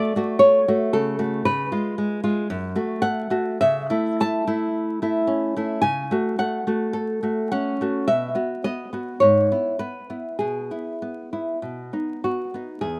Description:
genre	romantic piece for solo classical guitar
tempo	49-58 BPM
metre	2/4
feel	rubato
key	E major from 3.6 s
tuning	A4 = 440 Hz
part	nylon-string guitar	solo	0.0-13.0 s	E2 to A5	-23 LUFS	equal	slapback echo
room	light reverb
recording	recorded outdoors, with no room sound, vinyl crackle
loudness	-23 LUFS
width	mono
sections	0.0-12.8 A section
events	none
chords	0.0 F#m; 1.5 C#7; 2.5 F#m; 3.6 A/C#; 5.8 F#m/C#; 8.1 B; 9.2 E/G#; 10.4 E/B; 11.6 B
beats	0.41 | 1.46 2.50 | 3.60 4.75 | 5.82 6.95 | 8.06 9.20 | 10.39 11.61 | 12.80

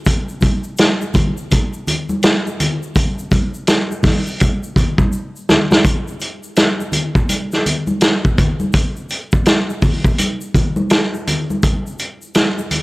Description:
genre	hip hop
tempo	83 BPM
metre	4/4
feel	swing 63% on 16ths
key	none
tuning	none
part	vintage drum kit	drums	0.1-12.8 s	hi-hat, kick drum, snare drum	-14 LUFS	equal	vintage 12-bit sampler grit
part	tube shaker and congas	percussion	0.1-12.8 s	none	-22 LUFS	equal	none
room	studio reverb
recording	dry, gritty hardware recording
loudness	-14 LUFS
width	side -22 dB against mid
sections	0.0-5.8 A section; 5.8-12.8 B section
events	drum fill 5.1-5.8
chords	none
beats	| 0.07 0.79 1.51 2.23 | 2.96 3.68 4.40 5.13 | 5.85 6.57 7.29 8.02 | 8.74 9.46 10.19 10.91 | 11.63 12.36

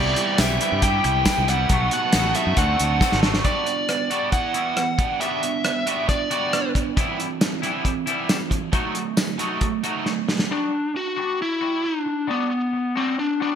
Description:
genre	indie rock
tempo	136 BPM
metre	4/4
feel	straight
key	G major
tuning	A4 = 440 Hz
part	biting lead guitar	melody	0.0-6.7, 10.5-13.6 s	B3 to G5	-23 LUFS	left 1 dB	overdrive
part	lush unison pad	sustained chords	0.0-3.4 s	G3 to B5	-34 LUFS	equal	chorus
part	biting overdriven guitar	riff	0.0-10.5 s	E3 to A4	-26 LUFS	right 10 dB	analog chorus, ping-pong delay
part	twangy electric guitar	riff	0.0-13.6 s	B2 to G4	-29 LUFS	left 6 dB	lush chorus
part	growling fingered electric bass	bass	0.0-3.4 s	Ab1 to G2	-24 LUFS	equal	overdrive
part	cloth-damped thuddy drum kit	drums	0.2-10.5 s	hi-hat, kick drum, rim click, snare drum, tambourine	-23 LUFS	equal	gated reverb
part	tambourine	percussion	0.4-3.1 s	none	-35 LUFS	left 15 dB	none
room	moderate plate reverb, RT60 1.3 s, small room reverb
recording	bright 1980s-style digital production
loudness	-20 LUFS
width	side -8 dB against mid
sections	0.0-3.5 A section; 3.5-10.5 B section; 10.5-13.6 C section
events	drum fill 3.0-3.5, 10.1-10.5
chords	0.0 Cmaj7; 1.7 B7; 2.6 D7; 3.5 Gmaj7; 4.3 Emadd9; 5.0 Gmaj7; 7.0 Cmaj7; 8.7 F#m6; 10.5 Gmaj7; 11.4 Emadd9; 12.1 Gmaj7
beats	0.39 0.83 1.26 | 1.70 2.14 2.57 3.01 | 3.45 3.89 4.33 4.77 | 5.21 5.65 6.09 6.53 | 6.97 7.41 7.85 8.29 | 8.73 9.18 9.62 10.06 | 10.51 10.95 11.39 11.84 | 12.29 12.73 13.18

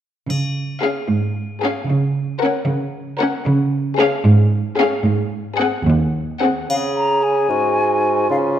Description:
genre	cinematic, playful, whimsical film cue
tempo	75 BPM (dotted quarters)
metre	6/8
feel	straight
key	Db major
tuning	A4 = 440 Hz
part	bright studio cello section	bass	0.3-6.5 s	Eb2 to Db3	-18 LUFS	right 2 dB	none
part	triangle	percussion	0.3-1.3, 6.7-7.7 s	none	-34 LUFS	left 3 dB	none
part	clear studio violin section	melody	0.8-6.6 s	F5 to Gb5	-25 LUFS	left 5 dB	none
part	dark studio violin section	second line	0.8-6.6 s	Ab4 to Bb4	-22 LUFS	left 4 dB	none
part	rich studio viola section	accompaniment	0.8-6.6 s	C4 to Db4	-25 LUFS	equal	none
part	bright clarinet	second line	6.7-8.6 s	F4 to Ab4	-22 LUFS	equal	none
part	hollow concert flute	second line	6.7-8.6 s	F5 to Bb5	-19 LUFS	left 2 dB	none
part	warm bassoon	accompaniment	6.7-8.6 s	Ab2 to Db3	-20 LUFS	right 1 dB	none
room	wet scoring stage reverb, RT60 1.6 s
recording	dark, warm production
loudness	-16 LUFS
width	side -10 dB against mid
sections	0.3-6.7 A section; 6.7-8.6 B section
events	none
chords	0.3 Db; 1.9 Gb/Db; 3.5 Db; 5.0 Ab7; 6.7 Db5; 7.5 Gbsus2/Ab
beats	| 0.30 1.10 | 1.90 2.68 | 3.47 4.25 | 5.05 5.86 | 6.69 7.50 | 8.29

